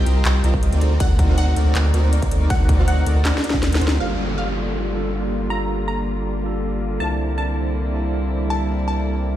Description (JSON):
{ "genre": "future bass", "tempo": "160 BPM", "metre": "4/4", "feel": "half-time", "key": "G minor", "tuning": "A4 = 441 Hz", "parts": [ { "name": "wide unison pluck", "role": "melody", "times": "0.0-9.1 s", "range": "F5 to Bb5", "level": "-31 LUFS", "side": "left 1 dB", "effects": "sidechain pumping, ping-pong delay" }, { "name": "rich chamber string section", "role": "sustained chords", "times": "0.0-9.4 s", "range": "D3 to F4", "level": "-32 LUFS", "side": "left 1 dB", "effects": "sidechain pumping, low-pass filter" }, { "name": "soft round pluck", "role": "arpeggios", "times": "0.0-4.0 s", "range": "F4 to Eb5", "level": "-35 LUFS", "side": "right 5 dB", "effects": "chorus, sidechain pumping, digital delay" }, { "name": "soft supersaw", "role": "riff", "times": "0.0-9.4 s", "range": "Bb3 to F#5", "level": "-27 LUFS", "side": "equal", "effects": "vintage 12-bit sampler grit, sidechain pumping, low-pass filter" }, { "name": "saturated sub bass", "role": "bass", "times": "0.0-9.4 s", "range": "G1 to D2", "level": "-20 LUFS", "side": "equal", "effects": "sidechain pumping" }, { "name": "trap drum kit", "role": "drums", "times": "0.1-4.1 s", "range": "crash cymbal, handclaps, hi-hat, ride cymbal, snare drum", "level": "-26 LUFS", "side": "left 1 dB", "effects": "low-pass filter on hats, studio reverb, low-pass filter on cymbals, low-pass filter on snare" }, { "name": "electronic kick drum", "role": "drums", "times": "0.5-3.6 s", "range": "none", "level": "-20 LUFS", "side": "equal", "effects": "studio reverb" }, { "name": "bright tine electric piano", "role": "accompaniment", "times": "4.0-9.4 s", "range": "G3 to A5", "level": "-28 LUFS", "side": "right 3 dB", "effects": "medium stereo tremolo, sidechain pumping, digital delay" }, { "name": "downlifter", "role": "sound effects", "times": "4.0-7.0 s", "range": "none", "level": "-32 LUFS", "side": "left 1 dB", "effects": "none" } ], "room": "digital ambience", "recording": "played on a big sound system in a bare room, stone room reverb", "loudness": "-18 LUFS", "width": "side -12 dB against mid", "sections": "0.0-4.0 A section; 4.0-9.4 B section", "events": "drop 0.0-4.0; drum fill 3.3-4.0; band accent 3.9; filter sweep on supersaw synth 4.0-9.4; filter sweep on string section 4.0-9.4", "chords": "0.0 F9sus4/C; 0.8 D7b9b13; 4.0 Gm9; 7.0 C13" }